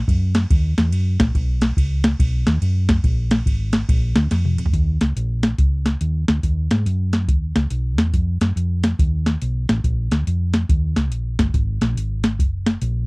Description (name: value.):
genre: uptempo gospel.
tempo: 141 BPM.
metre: 4/4.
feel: swing 65% on 8ths.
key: Eb minor.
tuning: A4 = 440 Hz.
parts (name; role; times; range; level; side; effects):
hollow-body short-scale fingered electric bass; bass; 0.1-13.1 s; Gb1 to Ab2; -20 LUFS; equal; none.
soft vintage rhythm box; drums; 0.1-12.9 s; hi-hat, kick drum, ride cymbal, snare drum, toms; -19 LUFS; equal; overdrive.
room: little or no reverb.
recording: dry, close 1970s-style studio recording.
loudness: -17 LUFS.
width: side -31 dB against mid.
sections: 0.0-4.7 A section; 4.7-13.1 B section.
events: drum fill 4.3-4.7.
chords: none.